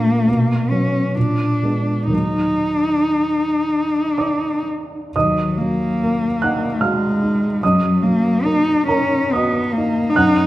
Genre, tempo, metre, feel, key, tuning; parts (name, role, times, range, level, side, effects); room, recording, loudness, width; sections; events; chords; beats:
classical, romantic duo for cello and grand piano; 54-76 BPM; 3/4; rubato; Eb minor; A4 = 437 Hz
warm cello; melody; 0.0-10.5 s; Gb3 to Eb4; -18 LUFS; left 1 dB
dark baby grand piano; accompaniment; 0.0-10.5 s; Eb2 to Gb6; -19 LUFS; right 1 dB
wet recital hall reverb, RT60 1.6 s; -16 LUFS; side -15 dB against mid
0.0-5.1 A section; 5.1-10.5 A section
0.3 B5; 1.2 Bb7b9; 2.1 Ebm; 7.6 Ebm/Gb
0.28 1.16 | 2.12 3.11 4.18 | 5.15 6.00 6.81 | 7.62 8.44 9.34 | 10.15